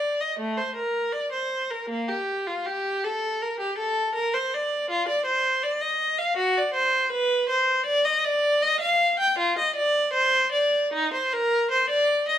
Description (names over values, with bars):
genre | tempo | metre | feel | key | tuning
classical, baroque-style suite movement for unaccompanied violin | 80 BPM | 4/4 | rubato | G minor | A4 = 440 Hz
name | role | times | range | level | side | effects
rich violin | solo | 0.0-12.4 s | A3 to G5 | -22 LUFS | equal | none
room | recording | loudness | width
moderate large studio reverb, RT60 1.3 s | none | -22 LUFS | side -10 dB against mid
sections
0.0-12.4 A section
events
none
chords
none